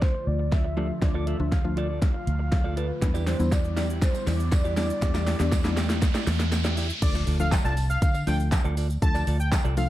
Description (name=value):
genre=dance-pop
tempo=120 BPM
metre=4/4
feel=straight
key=D dorian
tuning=A4 = 440 Hz
part: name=mellow horn-like synth lead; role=melody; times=0.0-6.5 s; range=B4 to F5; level=-34 LUFS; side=equal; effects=chorus
part: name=mallet-like synth pluck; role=accompaniment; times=0.0-9.9 s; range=F3 to A4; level=-32 LUFS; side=left 4 dB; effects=chorus, sidechain pumping
part: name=airy breathy pad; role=sustained chords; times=0.0-7.0 s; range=D3 to F4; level=-36 LUFS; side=right 1 dB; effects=chorus, sidechain pumping
part: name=electric guitar at the edge of break-up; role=riff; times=0.0-9.8 s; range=E4 to D5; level=-36 LUFS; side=right 3 dB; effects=wide subtle chorus
part: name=vintage muted fingered electric bass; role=bass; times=0.0-9.9 s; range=C2 to D3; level=-26 LUFS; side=equal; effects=sidechain pumping
part: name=pop drum kit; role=drums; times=0.0-9.9 s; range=crash cymbal, handclaps, hi-hat, kick drum, shaker, snare drum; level=-25 LUFS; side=equal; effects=none
part: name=riser and impact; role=sound effects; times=0.9-9.0 s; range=none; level=-39 LUFS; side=right 1 dB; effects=none
part: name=tambourine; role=percussion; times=3.1-9.9 s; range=none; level=-46 LUFS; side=right 10 dB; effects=none
part: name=octave-doubled lead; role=melody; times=7.0-9.9 s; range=D5 to A5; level=-31 LUFS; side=equal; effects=chorus, sidechain pumping, digital delay
room=light reverb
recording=dark, warm production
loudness=-22 LUFS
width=side -14 dB against mid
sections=0.0-7.0 A section; 7.0-9.9 B section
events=build-up 0.0-7.0; drum fill 0.0-7.0; riser 0.9-7.0; drop 7.0-9.9; impact 7.0-9.0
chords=0.0 Dm; 3.0 Em7; 7.0 Dm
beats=0.02 0.52 | 1.02 1.52 2.02 2.52 | 3.02 3.52 4.02 4.52 | 5.02 5.52 6.02 6.52 | 7.02 7.52 8.02 8.52 | 9.02 9.52